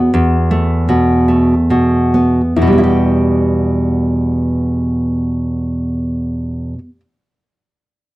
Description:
romantic duo for nylon-string guitar and classical guitar; 44-55 BPM; 4/4; rubato; E minor; A4 = 440 Hz
nylon-string guitar; melody; 0.0-6.7 s; E4 to F#4; -23 LUFS; left 5 dB
nylon-string guitar; accompaniment; 0.0-7.0 s; E2 to G4; -12 LUFS; right 1 dB
moderate small room reverb, RT60 0.6 s; dry, close 1970s-style studio recording; -12 LUFS; side -17 dB against mid
0.0-2.6 A section; 2.6-7.4 B section
slowing down 0.0-2.6
0.0 B5/E; 2.6 Em
0.13 1.28 | 2.56 3.76 4.94 6.14

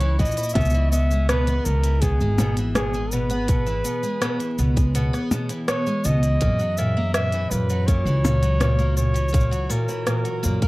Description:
folktronica; 82 BPM; 4/4; straight; C# dorian; A4 = 437 Hz
mellow flugelhorn; melody; 0.0-10.7 s; G#4 to E5; -27 LUFS; equal; digital delay
picked twelve-string acoustic guitar; arpeggios; 0.0-10.7 s; A#2 to E4; -26 LUFS; equal; vintage 12-bit sampler grit
upright bass; bass; 0.0-10.7 s; G#1 to A#2; -22 LUFS; equal
minimal click drum kit; drums; 0.0-10.7 s; hi-hat, percussion blips, rim click, shaker; -27 LUFS; equal
twinkling granular texture; texture; 0.0-0.6 s; C#4 to C#5; -44 LUFS; left 2 dB
electronic kick drum; drums; 0.2-10.7 s; -21 LUFS; equal
warbly tape-like pad; sustained chords; 1.4-10.7 s; A#2 to C#5; -32 LUFS; equal; chorus, built-in reverb
little or no reverb; vinyl crackle; -19 LUFS; side -20 dB against mid
0.6-10.7 A section
0.0 F#7 (rootless); 0.6 C#m7; 6.4 F#7
| 0.56 1.29 2.02 2.75 | 3.48 4.21 4.95 5.68 | 6.41 7.14 7.87 8.61 | 9.34 10.07

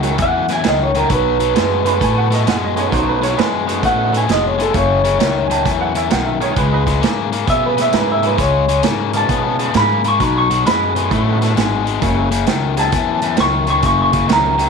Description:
electric blues shuffle; 132 BPM; 4/4; swing 66% on 8ths; A4 = 440 Hz
bright upright piano; second line; 0.0-7.2 s; D#4 to B5; -23 LUFS; right 11 dB; slapback echo
tonewheel organ; accompaniment; 0.0-14.7 s; G3 to G#4; -25 LUFS; right 13 dB; slow rotary speaker, overdrive
biting overdriven guitar; riff; 0.0-14.7 s; F#2 to B3; -19 LUFS; left 12 dB
upright bass; bass; 0.0-14.7 s; E#1 to B2; -20 LUFS; equal
vintage drum kit; drums; 0.0-14.7 s; hi-hat, kick drum, snare drum; -21 LUFS; right 6 dB
electric guitar through a small old amp; melody; 0.2-14.7 s; A4 to C#6; -17 LUFS; right 1 dB
light reverb, small room ambience; 1960s-style stereo with parts hard left and right; -13 LUFS; side -5 dB against mid
0.0-14.7 A section
0.0 F#9; 1.1 B9; 4.7 F#sus2; 6.6 C#9; 10.2 B9; 12.0 F#9
0.19 0.64 | 1.10 1.55 2.01 2.46 | 2.92 3.37 3.83 4.28 | 4.74 5.20 5.65 6.10 | 6.56 7.01 7.47 7.92 | 8.38 8.83 9.29 9.74 | 10.20 10.65 11.10 11.56 | 12.01 12.47 12.92 13.38 | 13.83 14.28

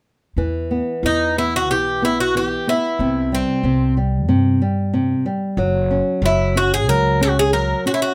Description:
fado-style ballad; 92 BPM; 4/4; rubato; E harmonic minor; A4 = 439 Hz
flamenco guitar; accompaniment; 0.4-8.1 s; C3 to C#4; -22 LUFS; equal
upright bass; bass; 0.4-7.7 s; F#1 to G2; -24 LUFS; equal
Irish bouzouki; melody; 1.1-8.1 s; C4 to A#4; -21 LUFS; equal
light reverb; -19 LUFS; mono
0.4-8.1 A section
0.4 E5; 3.0 C5; 5.6 F#5
| 0.37 1.04 1.70 2.35 | 3.00 3.65 4.29 4.93 | 5.58 6.22 6.87 7.53

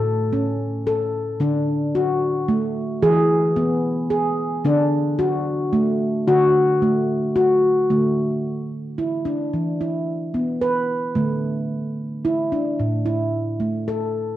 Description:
world meditative, meditative tuned percussion; 111 BPM; 3/4; swing 55% on 16ths; D lydian; A4 = 440 Hz
handpan; solo; 0.0-14.4 s; A2 to B4; -19 LUFS; equal; cassette tape
wet spring reverb, RT60 1.3 s, small room ambience; home recording on cassette; -19 LUFS; side -13 dB against mid
0.0-7.9 A section; 7.9-14.4 B section
0.0 A; 1.4 D; 3.0 E; 4.7 D; 7.9 D5; 9.5 E5; 11.2 D5; 12.8 A5
0.32 0.86 | 1.40 1.94 2.48 | 3.03 3.57 4.11 | 4.65 5.19 5.73 | 6.27 6.82 7.36 | 7.90 8.44 8.99 | 9.53 10.07 10.62 | 11.16 11.70 12.25 | 12.79 13.34 13.88

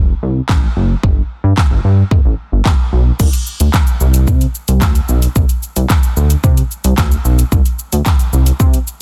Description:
dance-pop; 111 BPM; 4/4; straight; A4 = 440 Hz
chorused synth bass; bass; 0.0-8.8 s; F1 to C3; -15 LUFS; equal; sidechain pumping
pop drum kit; drums; 0.5-9.0 s; crash cymbal, handclaps, hi-hat, kick drum, shaker, snare drum; -16 LUFS; equal
little or no reverb; dense, heavily limited modern master; -13 LUFS; mono
0.0-3.2 A section; 3.2-9.0 B section
0.49 | 1.03 1.57 2.12 2.66 | 3.20 3.74 4.28 4.82 | 5.36 5.90 6.44 6.98 | 7.52 8.06 8.60

